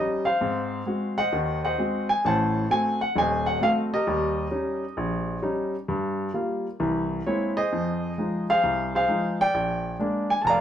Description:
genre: solo jazz.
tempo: 132 BPM.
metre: 4/4.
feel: swing 67% on 8ths.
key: unclear.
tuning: A4 = 437 Hz.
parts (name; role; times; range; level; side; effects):
warm baby grand piano; solo; 0.0-10.6 s; Eb1 to Bb5; -23 LUFS; equal; none.
room: wet studio reverb, RT60 0.5 s.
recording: heard from further back in the room.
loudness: -23 LUFS.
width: side -9 dB against mid.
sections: 0.0-10.6 A section.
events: none.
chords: 0.4 Ab7; 2.2 Adim7; 4.1 Eb7; 5.9 Gm7; 6.8 Caug7; 7.7 Fm7; 9.5 Bb7.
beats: | 0.40 0.86 1.32 1.77 | 2.23 2.69 3.14 3.60 | 4.06 4.51 4.97 5.42 | 5.88 6.34 6.79 7.25 | 7.71 8.16 8.62 9.07 | 9.53 9.99 10.44.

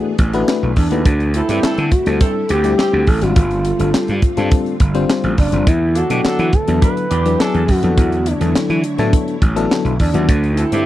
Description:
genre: early-eighties boogie funk.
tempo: 104 BPM.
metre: 4/4.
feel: straight.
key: unclear.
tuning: A4 = 440 Hz.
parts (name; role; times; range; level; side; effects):
expressive synth lead; melody; 0.0-10.9 s; D4 to B4; -20 LUFS; right 1 dB; chorus.
FM electric piano; accompaniment; 0.0-10.9 s; F#3 to C5; -20 LUFS; left 5 dB; chorus, tremolo.
soft string machine; sustained chords; 0.0-10.9 s; D3 to C#5; -28 LUFS; equal; none.
gritty slap bass; bass; 0.2-10.8 s; F1 to E3; -17 LUFS; right 1 dB; overdrive.
tight funk drum kit; drums; 0.2-10.9 s; handclaps, hi-hat, kick drum, snare drum; -16 LUFS; equal; none.
mellow horn section; second line; 1.3-10.8 s; E3 to B4; -25 LUFS; right 2 dB; none.
room: little or no reverb.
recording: dry, close 1970s-style studio recording.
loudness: -13 LUFS.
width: side -14 dB against mid.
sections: 0.0-10.9 A section.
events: none.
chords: 0.0 E9sus4; 1.1 D9sus4; 3.4 G9sus4; 5.7 E9sus4; 10.3 D9sus4.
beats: 0.48 | 1.06 1.63 2.21 2.79 | 3.36 3.94 4.52 5.09 | 5.67 6.25 6.83 7.40 | 7.98 8.56 9.13 9.71 | 10.29.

